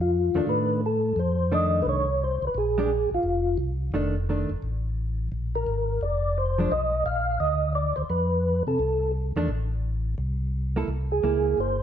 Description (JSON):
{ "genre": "soul jazz organ trio", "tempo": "173 BPM", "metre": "4/4", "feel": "swing 63% on 8ths", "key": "F mixolydian", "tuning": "A4 = 440 Hz", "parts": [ { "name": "percussive tonewheel organ", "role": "melody", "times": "0.0-11.8 s", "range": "F4 to F5", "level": "-25 LUFS", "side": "equal", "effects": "slow rotary speaker, chorus vibrato" }, { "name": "mellow tonewheel organ", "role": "bass", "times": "0.0-11.8 s", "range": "F1 to C3", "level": "-27 LUFS", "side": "equal", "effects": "chorus vibrato, slow rotary speaker" }, { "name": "hollow-body jazz guitar", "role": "accompaniment", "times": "0.4-4.5, 6.6-6.7, 9.4-11.8 s", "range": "Eb3 to A4", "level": "-29 LUFS", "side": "right 1 dB", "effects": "none" } ], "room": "moderate stone room reverb, RT60 1.3 s", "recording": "band playing live in one room", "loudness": "-23 LUFS", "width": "side -9 dB against mid", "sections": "0.0-11.8 A section", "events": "none", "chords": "0.0 F6; 2.6 Bb7sus2; 3.9 F6; 5.3 Bb9; 6.7 Bdim; 8.1 F; 10.9 C7" }